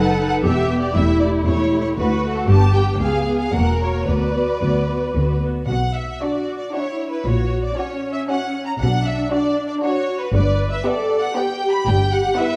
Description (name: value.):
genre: quick classical-period movement for string orchestra.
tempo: 116 BPM.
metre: 3/4.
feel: rubato.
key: B minor.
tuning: A4 = 438 Hz.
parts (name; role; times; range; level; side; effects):
rich studio violin section; melody; 0.0-12.6 s; A4 to B5; -27 LUFS; equal; none.
rich studio violin section; second line; 0.0-12.6 s; B3 to B4; -26 LUFS; equal; none.
rich studio viola section; accompaniment; 0.0-12.6 s; A3 to B4; -26 LUFS; equal; none.
clear studio cello section; bass; 0.0-12.3 s; C#2 to B2; -24 LUFS; equal; none.
warm studio double bass section; bass; 0.0-12.3 s; E1 to D2; -25 LUFS; equal; none.
room: wet recital hall reverb, RT60 1.7 s.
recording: dark, warm production.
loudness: -20 LUFS.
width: mono.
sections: 0.0-5.7 A section; 5.7-12.6 A section.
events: none.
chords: 0.4 Em; 1.0 A5/E; 2.0 D; 2.5 G; 3.0 C#7; 3.5 F#7/E; 4.1 Bm/D; 5.7 Bm; 7.3 F#/A#; 8.8 Bm; 10.3 G; 11.9 Em/G.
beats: 0.44 | 0.95 1.47 1.98 | 2.49 3.01 3.54 | 4.08 4.62 5.16 | 5.69 6.22 6.74 | 7.26 7.78 8.29 | 8.81 9.32 9.84 | 10.35 10.86 11.36 | 11.87 12.38.